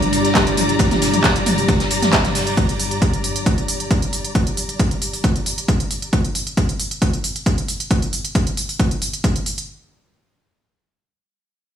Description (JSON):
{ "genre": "driving peak-time techno", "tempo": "135 BPM", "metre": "4/4", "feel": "straight", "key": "G minor", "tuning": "A4 = 440 Hz", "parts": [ { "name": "metallic inharmonic drone", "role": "drone", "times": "0.0-2.6 s", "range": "G2", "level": "-24 LUFS", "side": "left 2 dB", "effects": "chorus, built-in reverb, phaser, sidechain pumping" }, { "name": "techno drum kit", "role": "drums", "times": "0.0-9.7 s", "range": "handclaps, hi-hat, toms", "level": "-22 LUFS", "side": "right 1 dB", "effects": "sidechain pumping on hats, sidechain pumping on cymbals, sidechain pumping on toms" }, { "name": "vintage drum kit", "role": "drums", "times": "0.0-2.5 s", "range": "hi-hat, ride cymbal, snare drum", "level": "-27 LUFS", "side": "left 1 dB", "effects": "high-pass filter on cymbals, high-pass filter on hats, high-pass filter on snare, high-pass filter on room" }, { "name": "dark studio string section", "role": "texture", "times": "0.0-6.1 s", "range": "G4 to Bb5", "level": "-24 LUFS", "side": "right 1 dB", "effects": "sidechain pumping" }, { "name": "electronic kick drum", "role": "drums", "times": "0.4-9.3 s", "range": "none", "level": "-19 LUFS", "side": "equal", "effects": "none" } ], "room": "light reverb", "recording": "studio reverb", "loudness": "-16 LUFS", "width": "side -9 dB against mid", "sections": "0.0-9.7 A section", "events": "fade-out on string section 0.0-6.1", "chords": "0.0 Gm", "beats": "0.35 | 0.80 1.24 1.68 2.13 | 2.57 3.02 3.46 3.91 | 4.35 4.79 5.24 5.68 | 6.13 6.57 7.02 7.46 | 7.91 8.35 8.79 9.24" }